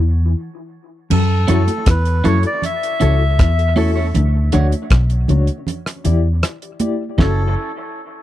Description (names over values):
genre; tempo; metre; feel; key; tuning
dub reggae; 79 BPM; 4/4; straight; F# phrygian; A4 = 440 Hz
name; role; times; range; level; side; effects
mellow electric guitar; riff; 0.0-6.3 s; B2 to F#3; -27 LUFS; left 6 dB; phaser, dub echo
vintage muted fingered electric bass; bass; 0.0-7.5 s; F#1 to F#2; -15 LUFS; equal; none
melodica; melody; 1.1-7.5 s; A4 to E5; -23 LUFS; left 2 dB; dub echo
damped 70s drum kit; drums; 1.1-7.4 s; crash cymbal, hi-hat, kick drum, rim click, snare drum; -18 LUFS; equal; none
congas; percussion; 1.1-7.5 s; none; -24 LUFS; right 4 dB; dub echo
clean electric guitar; accompaniment; 1.5-7.4 s; A3 to C#5; -26 LUFS; right 5 dB; dub echo
reed electric piano; stabs; 1.5-7.5 s; D4 to D5; -25 LUFS; left 7 dB; fast tremolo, dub echo
room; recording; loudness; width
little or no reverb; dry, close 1970s-style studio recording; -14 LUFS; side -13 dB against mid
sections
0.0-1.1 A section; 1.1-7.2 B section; 7.2-8.2 C section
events
break 0.0-1.1, 5.7-7.2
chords
0.0 N.C.; 1.1 F#m7; 4.1 Dmaj7; 5.7 Em7; 7.2 F#m7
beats
0.35 | 1.11 1.87 2.63 3.39 | 4.15 4.91 5.67 6.43 | 7.19